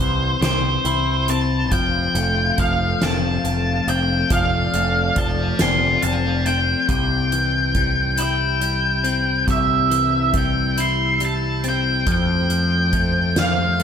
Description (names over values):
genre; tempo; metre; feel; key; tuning
post-rock; 46 BPM (dotted quarters); 6/8; straight; unclear; A4 = 440 Hz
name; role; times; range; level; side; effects
octave-fuzz lead guitar; melody; 0.0-13.8 s; C5 to C6; -21 LUFS; equal; distortion, slapback echo
clean electric guitar; arpeggios; 0.0-13.8 s; C3 to E4; -24 LUFS; left 5 dB; slapback echo
growling picked electric bass; bass; 0.0-13.8 s; F1 to F2; -23 LUFS; right 1 dB; overdrive
soft-mallet drum kit; drums; 0.4-13.8 s; hi-hat, kick drum, snare drum; -25 LUFS; right 1 dB; none
muted studio string section; sustained chords; 1.7-6.9, 12.1-13.8 s; A3 to F5; -32 LUFS; equal; none
room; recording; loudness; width
light reverb, small room ambience; none; -17 LUFS; side -8 dB against mid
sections
0.0-6.9 A section; 6.9-13.8 B section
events
none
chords
0.0 C; 1.7 F; 6.9 C; 12.1 F